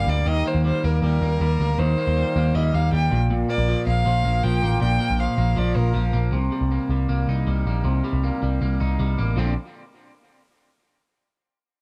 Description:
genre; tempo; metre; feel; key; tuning
jangly indie pop; 158 BPM; 4/4; straight; Bb major; A4 = 444 Hz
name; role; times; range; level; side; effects
rich violin; melody; 0.0-6.1 s; Bb4 to G5; -28 LUFS; equal; none
electric guitar at the edge of break-up; arpeggios; 0.0-9.5 s; G2 to Eb4; -28 LUFS; equal; subtle chorus
vintage muted picked electric bass; bass; 0.0-9.5 s; A1 to Eb2; -24 LUFS; equal; none
room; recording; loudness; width
little or no reverb; dry, close 1970s-style studio recording; -22 LUFS; mono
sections
0.0-6.3 A section; 6.3-9.4 B section; 9.4-10.9 C section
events
none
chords
0.3 Eb; 3.1 Bb5; 6.3 Cm7; 9.4 Bbadd9

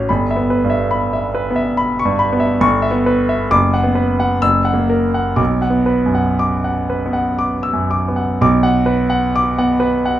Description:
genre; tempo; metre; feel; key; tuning
classical, romantic character piece for solo piano; 57-72 BPM; 3/4; rubato; B minor; A4 = 440 Hz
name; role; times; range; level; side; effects
bright concert grand piano; solo; 0.0-10.2 s; F#1 to E6; -14 LUFS; equal; none
room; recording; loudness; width
moderate large studio reverb, RT60 0.8 s; dark, warm production; -14 LUFS; side -12 dB against mid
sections
0.0-8.4 A section; 8.4-10.2 A section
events
none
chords
0.1 C#m7b5/G; 3.5 Bm/F#; 4.4 F#7; 5.4 Bm

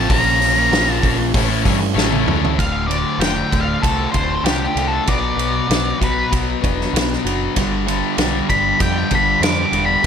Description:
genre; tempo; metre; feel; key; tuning
quiet-loud alternative rock; 96 BPM; 4/4; straight; unclear; A4 = 439 Hz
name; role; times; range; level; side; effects
octave-fuzz lead guitar; melody; 0.0-10.1 s; G4 to D6; -19 LUFS; equal; distortion
distorted electric guitar; riff; 0.0-10.1 s; D2 to Bb4; -22 LUFS; left 14 dB; distortion
fuzz guitar; riff; 0.0-2.6, 7.6-10.1 s; Eb2 to Bb4; -22 LUFS; right 17 dB; distortion
deep dub picked electric bass; bass; 0.0-10.1 s; D1 to G2; -23 LUFS; equal; none
loose indie drum kit; drums; 0.1-10.1 s; hi-hat, kick drum, ride cymbal, snare drum, toms; -21 LUFS; equal; none
clean electric guitar; arpeggios; 2.6-7.6 s; D2 to B4; -27 LUFS; right 12 dB; phaser, digital delay
room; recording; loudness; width
little or no reverb; none; -15 LUFS; side -8 dB against mid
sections
0.0-2.6 A section; 2.6-10.1 B section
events
drum fill 2.0-2.6; lead electric guitar solo 2.6-10.1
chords
0.1 Bbm; 1.3 A7; 2.6 Dm; 5.1 Bm; 7.6 G

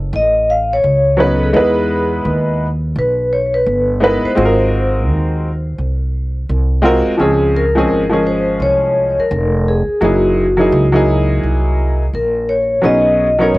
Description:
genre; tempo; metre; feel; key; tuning
hip hop; 85 BPM; 4/4; swing 61% on 16ths; Db major; A4 = 439 Hz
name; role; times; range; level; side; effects
upright bass; bass; 0.0-13.6 s; F1 to E2; -17 LUFS; equal; none
vibraphone with medium hard mallets; melody; 0.2-13.6 s; Gb4 to F5; -16 LUFS; left 1 dB; none
clear upright piano; accompaniment; 1.2-13.6 s; F3 to Cb5; -15 LUFS; equal; cassette tape
room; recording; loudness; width
wet booth ambience, RT60 0.2 s; home recording on cassette; -12 LUFS; side -19 dB against mid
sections
0.0-7.2 A section; 7.2-13.6 B section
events
vibraphone solo 0.0-7.2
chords
0.0 Cb9; 1.5 Emaj7; 4.4 Ab13; 7.2 Dbmaj7; 10.0 Gb13; 12.8 Cb69

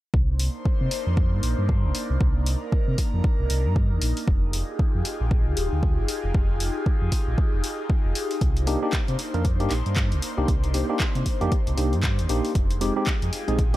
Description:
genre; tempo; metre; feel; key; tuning
deep house; 116 BPM; 4/4; swing 59% on 16ths; C minor; A4 = 440 Hz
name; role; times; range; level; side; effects
airy breathy pad; sustained chords; 0.4-13.8 s; Bb3 to C5; -31 LUFS; left 1 dB; chorus, phaser, sidechain pumping
sub bass with octave; bass; 0.1-13.8 s; Eb1 to C3; -24 LUFS; equal; none
electronic kick drum; drums; 0.1-13.7 s; none; -23 LUFS; equal; overdrive
punchy analog drum machine; drums; 0.4-13.8 s; handclaps, hi-hat; -32 LUFS; equal; none
tine electric piano; stabs; 8.7-13.8 s; Ab3 to Bb4; -27 LUFS; equal; fast stereo tremolo, sidechain pumping, analog delay
room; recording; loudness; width
little or no reverb; none; -21 LUFS; side -16 dB against mid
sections
0.1-13.8 A section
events
none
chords
0.1 Cm9; 4.3 Fm9; 8.4 Cm9; 12.6 Fm9

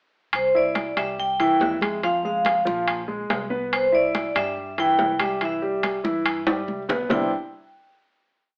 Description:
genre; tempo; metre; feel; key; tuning
Afro-Cuban jazz; 142 BPM; 4/4; straight; C major; A4 = 440 Hz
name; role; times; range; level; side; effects
upright bass; bass; 0.3-7.3 s; Bb1 to G2; -42 LUFS; equal; none
congas; percussion; 0.3-7.2 s; none; -37 LUFS; equal; none
timbales; percussion; 0.3-7.2 s; none; -28 LUFS; equal; none
vibraphone with medium hard mallets; melody; 0.4-7.3 s; C5 to G5; -25 LUFS; equal; none
warm grand piano; accompaniment; 0.5-7.3 s; C3 to E5; -28 LUFS; equal; none
room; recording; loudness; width
moderate studio reverb, RT60 0.7 s; AM radio sound; -23 LUFS; mono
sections
0.3-7.1 A section; 7.1-8.6 final chord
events
drum fill 6.5-7.1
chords
0.3 Cadd9; 1.2 C; 2.0 Fm; 2.9 Bbsus2; 3.7 Cmaj7; 7.1 Cmaj9

